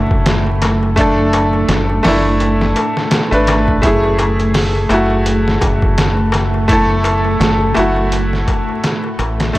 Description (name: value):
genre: trip hop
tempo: 84 BPM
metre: 4/4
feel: swing 58% on 16ths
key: F# minor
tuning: A4 = 441 Hz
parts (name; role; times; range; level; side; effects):
- bright upright piano; accompaniment; 0.0-9.6 s; A3 to B4; -16 LUFS; equal; harmonic tremolo, tape echo
- string machine, cellos; sustained chords; 0.0-9.6 s; A3; -23 LUFS; equal; ensemble chorus
- deep dub fingered electric bass; bass; 0.0-9.6 s; F#1 to A1; -17 LUFS; equal; none
- trip hop sampler-style drum kit; drums; 0.1-9.6 s; hi-hat, kick drum, snare drum; -17 LUFS; equal; overdrive
- darbuka; percussion; 0.1-9.6 s; none; -25 LUFS; left 2 dB; none
room: digital ambience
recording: dry, gritty hardware recording, vinyl crackle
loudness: -12 LUFS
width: side -17 dB against mid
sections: 0.0-9.6 A section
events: fade-out 7.6-9.6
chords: 0.0 D/F#; 3.8 F#m9